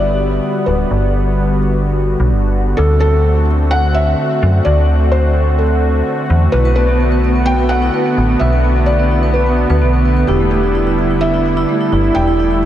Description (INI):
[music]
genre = IDM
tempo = 128 BPM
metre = 4/4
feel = straight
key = G major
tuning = A4 = 440 Hz
[part]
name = felt-muted upright piano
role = melody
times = 0.0-12.7 s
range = G4 to G5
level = -19 LUFS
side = left 1 dB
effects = diffuse ambient delay
[part]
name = warm analog pad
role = sustained chords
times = 0.0-12.7 s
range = D3 to F#4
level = -17 LUFS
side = equal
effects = lush chorus
[part]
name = metallic FM bass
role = bass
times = 0.0-12.7 s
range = D1 to F#2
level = -14 LUFS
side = equal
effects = none
[part]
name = vibraphone with medium mallets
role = arpeggios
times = 6.5-12.7 s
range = A3 to B4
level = -18 LUFS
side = right 3 dB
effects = diffuse ambient delay
[sound]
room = moderate huge ambient reverb, RT60 7.8 s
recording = dreamy mix soaked in reverb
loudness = -12 LUFS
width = side -12 dB against mid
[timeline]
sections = 0.0-12.7 A section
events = none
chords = 0.0 Gmaj7; 2.8 D7; 6.5 Bm7; 10.3 Em7